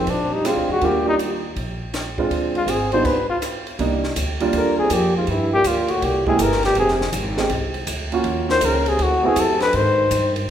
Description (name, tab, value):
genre	jazz, small-group swing and bop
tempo	162 BPM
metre	4/4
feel	swing 66% on 8ths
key	Eb major, C minor from 3.8 s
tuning	A4 = 440 Hz
part	breathy trumpet	melody	0.0-10.4 s	C4 to C5	-20 LUFS	left 2 dB	none
part	trombone with cup mute	second line	0.0-10.4 s	G2 to Eb4	-25 LUFS	right 3 dB	none
part	warm upright piano	accompaniment	0.0-9.4 s	G3 to G4	-24 LUFS	right 3 dB	none
part	upright bass	bass	0.0-10.5 s	F1 to Ab2	-26 LUFS	equal	none
part	compact cocktail drum kit	drums	0.1-10.4 s	crash cymbal, hi-hat, kick drum, ride cymbal, rim click, snare drum	-28 LUFS	right 1 dB	none
room	wet recital hall reverb, RT60 1.4 s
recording	recorded in a church or concert hall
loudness	-17 LUFS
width	side -9 dB against mid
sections	0.0-3.8 A section; 3.8-10.5 B section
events	none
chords	0.1 Bb7; 0.8 Ebmaj7; 2.3 Dm7b5; 3.1 N.C.; 3.8 Cm9; 5.3 G5; 6.0 C7b13; 6.8 Fm; 8.3 Ebm9; 9.0 D9; 9.7 Abmaj7